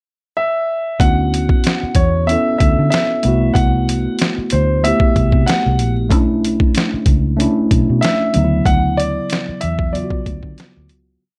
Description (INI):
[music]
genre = R&B, neo-soul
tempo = 94 BPM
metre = 4/4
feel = swing 55% on 16ths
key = D major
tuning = A4 = 440 Hz
[part]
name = warm concert grand piano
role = melody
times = 0.4-10.8 s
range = C5 to F#5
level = -22 LUFS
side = equal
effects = slapback echo
[part]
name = tine electric piano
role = accompaniment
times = 1.0-11.2 s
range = C#3 to A4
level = -21 LUFS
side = equal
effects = subtle chorus
[part]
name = vintage muted fingered electric bass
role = bass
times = 1.0-11.2 s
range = Bb1 to D3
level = -20 LUFS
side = equal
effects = none
[part]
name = boom bap sampler-style drum kit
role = drums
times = 1.0-11.1 s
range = hi-hat, kick drum, snare drum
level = -19 LUFS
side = equal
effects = none
[sound]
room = light reverb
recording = dark, warm production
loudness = -16 LUFS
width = mono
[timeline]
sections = 0.0-1.0 pickup bar; 1.0-11.2 A section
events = fade-out 8.7-11.2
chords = 0.0 N.C.; 1.0 Dmaj9; 3.2 Cmaj9#11; 6.1 Bm9; 8.3 Dmaj9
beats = 0.36 | 1.00 1.64 2.28 2.91 | 3.55 4.19 4.83 5.47 | 6.11 6.74 7.38 8.02 | 8.66 9.30 9.94 10.57